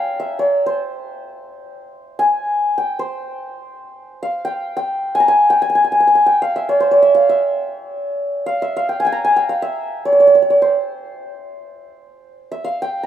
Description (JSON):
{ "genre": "persian", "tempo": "free time", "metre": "none", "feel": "none", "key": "C dastgah homayun", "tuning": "A4 = 440 Hz", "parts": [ { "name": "santur", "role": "solo", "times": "0.0-13.1 s", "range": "C5 to Bb5", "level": "-15 LUFS", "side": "equal", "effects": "none" } ], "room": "light reverb, studio reverb", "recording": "rough home demo mix", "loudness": "-14 LUFS", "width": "side -10 dB against mid", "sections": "0.0-3.9 A section; 3.9-13.1 A section", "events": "none", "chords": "none", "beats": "free time" }